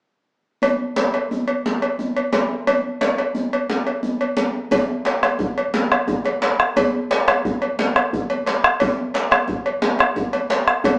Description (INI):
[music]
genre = west african traditional, West African drum ensemble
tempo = 117 BPM (dotted quarters)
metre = 12/8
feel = straight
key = none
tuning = none
[part]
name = cowbell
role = percussion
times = 0.6-11.0 s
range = none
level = -22 LUFS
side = equal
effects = none
[part]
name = djembe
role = percussion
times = 0.6-11.0 s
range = none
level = -21 LUFS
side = equal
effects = none
[part]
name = bombo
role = percussion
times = 4.7-11.0 s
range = none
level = -19 LUFS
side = equal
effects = none
[sound]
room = wet studio reverb, RT60 0.9 s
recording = band playing live in one room, small speaker sound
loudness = -17 LUFS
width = side -38 dB against mid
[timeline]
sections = 0.6-4.7 A section; 4.7-11.0 B section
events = none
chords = none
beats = | 0.62 1.13 1.65 2.16 | 2.67 3.18 3.69 4.21 | 4.72 5.23 5.74 6.25 | 6.77 7.28 7.79 8.30 | 8.81 9.32 9.83 10.34 | 10.85